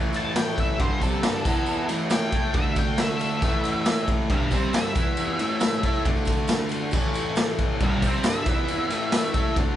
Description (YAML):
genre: garage rock duo or trio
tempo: 137 BPM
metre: 4/4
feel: straight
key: unclear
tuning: A4 = 440 Hz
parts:
  - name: fuzz guitar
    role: riff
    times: 0.0-9.8 s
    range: G2 to A4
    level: -26 LUFS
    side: equal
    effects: distortion
  - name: tambourine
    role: percussion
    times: 0.0-9.6 s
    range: none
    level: -42 LUFS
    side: right 5 dB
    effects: none
  - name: raw garage drum kit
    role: drums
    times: 0.1-9.7 s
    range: crash cymbal, kick drum, ride cymbal, snare drum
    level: -24 LUFS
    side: equal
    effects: none
  - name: octave-fuzz lead guitar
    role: melody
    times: 0.2-9.5 s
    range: G4 to A5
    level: -29 LUFS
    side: equal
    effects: distortion
room: moderate large studio reverb, RT60 1.1 s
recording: band playing live in one room, nothing above 10.8 kHz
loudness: -21 LUFS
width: side -12 dB against mid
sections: 0.0-9.8 A section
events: lead electric guitar solo 0.0-9.8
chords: 0.0 A5; 1.5 E5; 1.9 A5; 2.6 D5; 3.4 A5; 5.0 E5; 5.4 A5; 6.1 D5; 6.9 A5; 8.5 E5; 8.9 A5